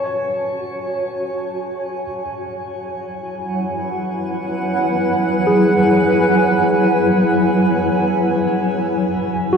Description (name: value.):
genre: ambient.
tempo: free time.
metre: none.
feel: none.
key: unclear.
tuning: A4 = 440 Hz.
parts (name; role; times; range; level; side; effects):
granular cloud pad; sustained chords; 0.0-9.6 s; F#3 to A5; -17 LUFS; equal; built-in reverb, shimmer reverb.
overdriven tine electric piano; arpeggios; 0.0-9.6 s; F#4 to C#5; -22 LUFS; equal; diffuse ambient delay, shimmer reverb.
rich studio double bass section; bass; 8.9-9.6 s; F#1; -38 LUFS; equal; none.
room: wet cathedral reverb, RT60 6.3 s.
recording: none.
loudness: -16 LUFS.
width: side -6 dB against mid.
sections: 0.0-8.9 A section.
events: fade-in on ambient pad 0.0-8.9.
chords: 0.0 F#m; 2.0 E6/F#.